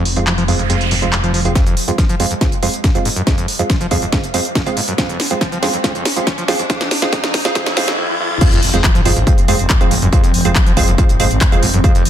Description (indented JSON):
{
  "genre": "driving peak-time techno",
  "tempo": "140 BPM",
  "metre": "4/4",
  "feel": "straight",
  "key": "F minor",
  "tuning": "A4 = 439 Hz",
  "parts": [
    { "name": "screaming distorted acid line", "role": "riff", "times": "0.0-12.0 s", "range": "F1 to F3", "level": "-22 LUFS", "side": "equal", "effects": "distortion, chorus, sidechain pumping, dub echo" },
    { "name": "growling FM bass", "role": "bass", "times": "0.0-1.5, 8.5-12.1 s", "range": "F1 to Ab1", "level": "-18 LUFS", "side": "equal", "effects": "sidechain pumping" },
    { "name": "swarming drone", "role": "drone", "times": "0.0-1.6, 9.0-12.1 s", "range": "F3 to C4", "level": "-24 LUFS", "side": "right 1 dB", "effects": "built-in reverb, sidechain pumping" },
    { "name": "noise sweep, riser and impact", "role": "sound effects", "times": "0.5-10.1 s", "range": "none", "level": "-25 LUFS", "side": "equal", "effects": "none" },
    { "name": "techno drum kit", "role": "drums", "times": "0.1-12.1 s", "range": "crash cymbal, handclaps, hi-hat, snare drum", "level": "-19 LUFS", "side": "equal", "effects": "sidechain pumping on hats, low-pass filter on hats, low-pass filter on snare, sidechain pumping on cymbals, low-pass filter on cymbals, low-pass filter on room" },
    { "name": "wavetable chord stab", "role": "stabs", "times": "0.2-12.0 s", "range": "Ab3 to F4", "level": "-21 LUFS", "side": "right 4 dB", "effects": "sidechain pumping, dub echo" },
    { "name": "electronic kick drum", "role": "drums", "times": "1.6-11.9 s", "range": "none", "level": "-14 LUFS", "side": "equal", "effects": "none" }
  ],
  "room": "light reverb",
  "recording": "dense, heavily limited modern master, high-pass filter",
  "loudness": "-12 LUFS",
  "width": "side -10 dB against mid",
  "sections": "0.0-1.6 A section; 1.6-8.4 B section; 8.4-12.1 C section",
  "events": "noise sweep 0.5-1.6; build-up 1.6-8.4; drum fill 1.6-8.0; riser 1.6-8.4; filter sweep on acid bass 1.6-8.4; filter sweep on synth stab 1.6-8.4; filter sweep 1.6-8.4; drop 8.4-12.1; impact 8.4-10.1",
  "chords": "0.0 Fm",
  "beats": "0.27 0.70 1.13 | 1.55 1.98 2.41 2.84 | 3.27 3.70 4.13 4.55 | 4.98 5.41 5.84 6.27 | 6.70 7.13 7.55 7.98 | 8.41 8.84 9.27 9.70 | 10.13 10.55 10.98 11.41 | 11.84"
}